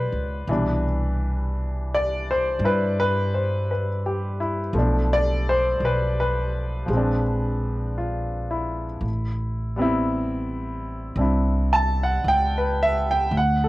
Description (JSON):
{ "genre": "jazz ballad", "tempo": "56 BPM", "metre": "4/4", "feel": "swing 68% on 8ths", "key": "unclear", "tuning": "A4 = 439 Hz", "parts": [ { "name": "clear baby grand piano", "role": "accompaniment", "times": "0.0-13.7 s", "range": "B2 to A5", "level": "-23 LUFS", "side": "equal", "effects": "none" }, { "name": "upright bass", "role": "bass", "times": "0.0-13.7 s", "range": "A1 to G2", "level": "-24 LUFS", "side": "equal", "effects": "none" } ], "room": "moderate booth ambience, RT60 0.2 s", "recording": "home recording on cassette", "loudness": "-21 LUFS", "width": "side -18 dB against mid", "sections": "0.0-13.7 A section", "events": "none", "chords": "0.5 Cmaj7; 4.7 Bm7b5; 6.9 Bb9; 9.0 Am9" }